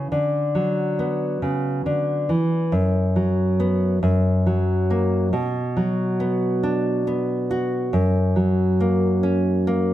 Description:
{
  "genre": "folk, solo fingerstyle acoustic guitar",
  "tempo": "46 BPM (dotted quarters)",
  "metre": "6/8",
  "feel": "straight",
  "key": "B harmonic minor",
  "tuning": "A4 = 441 Hz",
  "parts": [
    { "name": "nylon-string guitar", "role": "solo", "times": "0.0-9.9 s", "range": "F#2 to F#4", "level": "-19 LUFS", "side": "equal", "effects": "none" }
  ],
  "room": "light reverb",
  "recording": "close, detailed microphones",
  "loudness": "-19 LUFS",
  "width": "side -13 dB against mid",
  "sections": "0.0-5.3 A section; 5.3-9.9 A section",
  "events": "none",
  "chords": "0.1 Bm/D; 2.7 B5/F#; 4.0 F#; 5.3 Bm; 7.9 F#",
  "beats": "| 0.11 1.41 | 2.72 4.02 | 5.32 6.63 | 7.93 9.23"
}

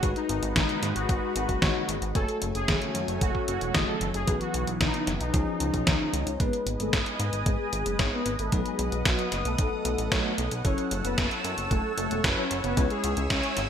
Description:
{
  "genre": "italo disco",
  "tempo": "113 BPM",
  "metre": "4/4",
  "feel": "straight",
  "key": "unclear",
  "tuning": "A4 = 436 Hz",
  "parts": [
    { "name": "analog synth brass", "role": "melody", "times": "0.0-13.6 s", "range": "F#3 to C#5", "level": "-31 LUFS", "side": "left 1 dB", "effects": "chorus" },
    { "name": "lush unison pad", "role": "sustained chords", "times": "0.0-13.7 s", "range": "E3 to E6", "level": "-34 LUFS", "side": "equal", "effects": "chorus, phaser" },
    { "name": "bell-like tine electric piano", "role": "stabs", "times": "0.0-13.7 s", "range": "E3 to G#5", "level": "-35 LUFS", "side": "left 3 dB", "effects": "medium stereo tremolo, low-pass filter" },
    { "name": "chorused synth bass", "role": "bass", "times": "0.0-13.7 s", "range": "E1 to G#2", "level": "-31 LUFS", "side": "equal", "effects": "none" },
    { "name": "detuned 8-bit digital drum machine", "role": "drums", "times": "0.0-13.7 s", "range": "hi-hat, snare drum", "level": "-29 LUFS", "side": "equal", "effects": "high-pass filter on hats, high-pass filter on snare, high-pass filter on room, gated reverb" },
    { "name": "electronic kick drum", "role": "drums", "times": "0.0-13.4 s", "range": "none", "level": "-28 LUFS", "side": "equal", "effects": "none" }
  ],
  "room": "light reverb, digital ambience",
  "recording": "bright 1980s-style digital production",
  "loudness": "-24 LUFS",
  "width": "side -8 dB against mid",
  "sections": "0.0-6.4 A section; 6.4-13.7 B section",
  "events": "filter sweep on analog polysynth 6.4-13.7",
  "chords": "0.0 G#m7; 2.2 F#madd9; 4.3 Bsus4; 5.3 C#add9; 6.4 G#m; 10.6 F#m7; 12.8 C#m",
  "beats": "| 0.03 0.56 1.09 1.62 | 2.15 2.68 3.21 3.75 | 4.28 4.81 5.34 5.87 | 6.40 6.93 7.46 7.99 | 8.52 9.05 9.59 10.12 | 10.65 11.18 11.71 12.24 | 12.77 13.30"
}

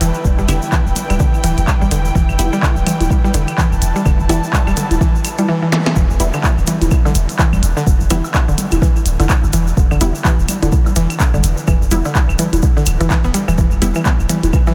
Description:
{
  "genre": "minimal techno",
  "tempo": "126 BPM",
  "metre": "4/4",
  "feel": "swing 59% on 16ths",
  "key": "E minor",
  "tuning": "A4 = 441 Hz",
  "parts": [
    { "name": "mallet-like synth pluck", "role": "riff", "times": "0.0-14.7 s", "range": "D3 to B3", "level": "-22 LUFS", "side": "equal", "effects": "chorus, sidechain pumping, tape echo" },
    { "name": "punchy sub bass", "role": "bass", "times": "0.0-14.5 s", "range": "D1 to G1", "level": "-20 LUFS", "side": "equal", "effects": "sidechain pumping" },
    { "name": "minimal click drum kit", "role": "drums", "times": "0.0-14.5 s", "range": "handclaps, hi-hat, snare drum", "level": "-26 LUFS", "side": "equal", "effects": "none" },
    { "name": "tube shaker", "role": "percussion", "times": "0.0-14.7 s", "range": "none", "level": "-31 LUFS", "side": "equal", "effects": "none" },
    { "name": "muted studio string section", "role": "texture", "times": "0.0-5.5 s", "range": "E4 to A5", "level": "-28 LUFS", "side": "equal", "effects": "sidechain pumping" },
    { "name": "electronic kick drum", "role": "drums", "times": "0.2-14.6 s", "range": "none", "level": "-17 LUFS", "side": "equal", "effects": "none" },
    { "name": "filtered dub chord stab", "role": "stabs", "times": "0.5-13.9 s", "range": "G3 to E4", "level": "-29 LUFS", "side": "equal", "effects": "none" },
    { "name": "claves, congas and woodblock", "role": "percussion", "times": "0.5-14.7 s", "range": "none", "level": "-26 LUFS", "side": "equal", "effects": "tape echo" },
    { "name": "zap", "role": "sound effects", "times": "5.7-5.9 s", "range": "none", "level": "-31 LUFS", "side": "equal", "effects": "none" }
  ],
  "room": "moderate huge ambient reverb, RT60 7.9 s",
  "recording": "dreamy mix soaked in reverb",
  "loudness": "-15 LUFS",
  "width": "mono",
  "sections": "0.0-6.0 A section; 6.0-14.7 B section",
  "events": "drum fill 5.7; drop 6.0-14.7",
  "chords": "0.0 Em; 6.0 N.C.",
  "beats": "| 0.25 0.72 1.20 1.68 | 2.15 2.63 3.10 3.58 | 4.06 4.53 5.01 5.49 | 5.96 6.44 6.91 7.39 | 7.87 8.34 8.82 9.29 | 9.77 10.25 10.72 11.20 | 11.68 12.15 12.63 13.10 | 13.58 14.06 14.53"
}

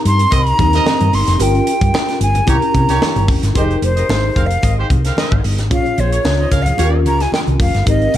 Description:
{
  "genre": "polished 1980s jazz-funk pop",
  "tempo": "111 BPM",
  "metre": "4/4",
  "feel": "swing 54% on 16ths",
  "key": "F minor from 3.6 s",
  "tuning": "A4 = 441 Hz",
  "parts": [
    { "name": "breathy jazz flute", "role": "melody", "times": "0.0-8.2 s", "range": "C5 to C6", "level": "-19 LUFS", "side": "right 1 dB", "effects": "none" },
    { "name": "mellow tine electric piano", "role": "accompaniment", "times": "0.0-8.2 s", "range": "C4 to Db5", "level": "-21 LUFS", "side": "left 2 dB", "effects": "medium stereo tremolo, ensemble chorus" },
    { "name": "hollow-body short-scale fingered electric bass", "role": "bass", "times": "0.1-8.2 s", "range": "F1 to C3", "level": "-16 LUFS", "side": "equal", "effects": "none" },
    { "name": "tight funk drum kit", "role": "drums", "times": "0.1-8.2 s", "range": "hi-hat, kick drum, snare drum", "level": "-18 LUFS", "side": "equal", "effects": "none" },
    { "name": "warm horn section", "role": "second line", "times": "0.3-7.0 s", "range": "Ab3 to F5", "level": "-25 LUFS", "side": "right 2 dB", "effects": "ping-pong delay" },
    { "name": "congas", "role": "percussion", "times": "0.3-8.0 s", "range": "none", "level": "-27 LUFS", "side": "right 2 dB", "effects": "none" }
  ],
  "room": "light reverb, studio reverb",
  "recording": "dark, warm production",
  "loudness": "-12 LUFS",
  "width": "side -12 dB against mid",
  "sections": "0.0-3.6 A section; 3.6-8.2 B section",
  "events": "flute solo 3.6-8.2",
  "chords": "0.0 Abmaj9 (rootless); 1.4 Gm7b5; 2.5 C7b9; 3.6 Fm11; 5.7 Bbm7; 6.8 Eb7",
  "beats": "0.32 0.86 | 1.40 1.94 2.48 3.01 | 3.55 4.09 4.63 5.17 | 5.71 6.25 6.79 7.33 | 7.87"
}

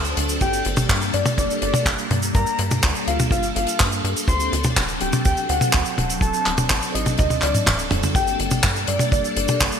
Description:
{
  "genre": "italo disco",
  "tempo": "124 BPM",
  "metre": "4/4",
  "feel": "straight",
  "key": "unclear",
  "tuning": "A4 = 436 Hz",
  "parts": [
    { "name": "phased string machine", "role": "sustained chords", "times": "0.0-9.8 s", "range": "F#3 to A4", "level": "-26 LUFS", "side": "left 1 dB", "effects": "ensemble chorus, phaser" },
    { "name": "tight sequencer bass", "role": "bass", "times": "0.0-9.7 s", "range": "D1 to G2", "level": "-26 LUFS", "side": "equal", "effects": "none" },
    { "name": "damped 70s drum kit", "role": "drums", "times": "0.0-9.8 s", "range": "cabasa, handclaps, hi-hat, toms", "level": "-22 LUFS", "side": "equal", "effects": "small room ambience" },
    { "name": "soft octave-layered synth lead", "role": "melody", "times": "0.4-9.6 s", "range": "D5 to C6", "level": "-25 LUFS", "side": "left 1 dB", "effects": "chorus, phaser, ping-pong delay" },
    { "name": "kick drum", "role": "drums", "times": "0.4-9.7 s", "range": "none", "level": "-22 LUFS", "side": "equal", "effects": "small room ambience" }
  ],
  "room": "moderate lush hall reverb, RT60 2.3 s",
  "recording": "bright 1980s-style digital production",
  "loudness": "-18 LUFS",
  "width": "side -7 dB against mid",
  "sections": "0.0-9.8 A section",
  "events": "drum fill 7.2-8.2",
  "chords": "0.4 Gmadd9; 4.3 D7; 8.2 Gmadd9",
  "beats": "| 0.41 0.90 1.38 1.86 | 2.35 2.83 3.31 3.80 | 4.28 4.77 5.25 5.74 | 6.22 6.70 7.19 7.67 | 8.15 8.64 9.12 9.61"
}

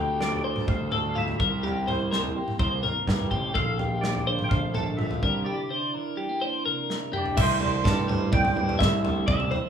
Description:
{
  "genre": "math rock and midwest emo",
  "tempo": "126 BPM",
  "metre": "4/4",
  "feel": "straight",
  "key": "unclear",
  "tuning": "A4 = 440 Hz",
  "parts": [
    { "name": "twangy electric guitar", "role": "melody", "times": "0.0-9.7 s", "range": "Bb4 to G5", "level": "-32 LUFS", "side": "right 2 dB", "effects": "ensemble chorus, slapback echo" },
    { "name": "twelve-string electric guitar", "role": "accompaniment", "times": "0.0-9.7 s", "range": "D2 to F4", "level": "-33 LUFS", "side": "right 8 dB", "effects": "none" },
    { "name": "twelve-string electric guitar", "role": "arpeggios", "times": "0.0-9.7 s", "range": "F4 to E5", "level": "-29 LUFS", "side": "left 3 dB", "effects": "tremolo" },
    { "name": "fuzz picked electric bass", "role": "bass", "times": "0.0-9.5 s", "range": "A1 to G2", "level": "-28 LUFS", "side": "right 1 dB", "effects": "overdrive" },
    { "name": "modern studio drum kit", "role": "drums", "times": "0.2-9.6 s", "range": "crash cymbal, kick drum, snare drum, toms", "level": "-28 LUFS", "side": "equal", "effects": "none" }
  ],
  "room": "light reverb",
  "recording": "rough home demo mix, small room ambience",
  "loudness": "-23 LUFS",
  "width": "side -8 dB against mid",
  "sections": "0.0-7.4 A section; 7.4-9.7 B section",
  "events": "break 5.5-7.4; drum fill 6.9-7.4",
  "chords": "0.0 Dm11; 1.4 C7; 3.6 Bbmaj9; 5.2 C9; 7.4 C69",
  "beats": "0.21 0.69 1.17 | 1.64 2.12 2.60 3.08 | 3.56 4.04 4.51 4.99 | 5.47 5.95 6.42 6.90 | 7.38 7.85 8.33 8.80 | 9.28"
}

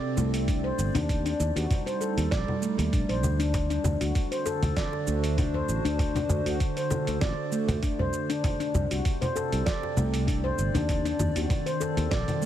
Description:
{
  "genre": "organic downtempo",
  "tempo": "98 BPM",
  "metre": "4/4",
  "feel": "swing 54% on 16ths",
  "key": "unclear",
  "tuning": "A4 = 440 Hz",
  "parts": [
    { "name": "warbly tape-like pad", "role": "sustained chords", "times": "0.0-12.5 s", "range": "C3 to D5", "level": "-34 LUFS", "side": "right 1 dB", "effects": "chorus, built-in reverb, sidechain pumping" },
    { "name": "handpan", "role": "arpeggios", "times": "0.0-12.5 s", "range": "A3 to D5", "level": "-29 LUFS", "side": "left 1 dB", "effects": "digital delay" },
    { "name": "sustaining fretless electric bass", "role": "bass", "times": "0.2-12.2 s", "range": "G1 to Eb2", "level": "-28 LUFS", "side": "equal", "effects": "sidechain pumping" },
    { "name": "dusty soul sampler-style drum kit", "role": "drums", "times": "0.2-12.5 s", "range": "congas, hi-hat, shaker, snare drum", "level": "-34 LUFS", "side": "equal", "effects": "overdrive" },
    { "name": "electronic kick drum", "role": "drums", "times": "0.5-12.2 s", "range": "none", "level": "-28 LUFS", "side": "equal", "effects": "overdrive" },
    { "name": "djembe", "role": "percussion", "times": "3.5-11.9 s", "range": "none", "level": "-34 LUFS", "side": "left 1 dB", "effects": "none" }
  ],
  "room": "light reverb, digital ambience",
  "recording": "heavily compressed radio sound",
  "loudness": "-25 LUFS",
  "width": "side -11 dB against mid",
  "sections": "0.0-12.5 A section",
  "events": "none",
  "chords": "0.0 Cm; 1.1 Ebmaj7; 3.5 D7; 8.4 N.C.; 10.9 Ebmaj7",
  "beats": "0.48 | 1.09 1.70 2.32 2.93 | 3.54 4.15 4.76 5.38 | 5.99 6.60 7.21 7.83 | 8.44 9.05 9.66 10.28 | 10.89 11.50 12.11"
}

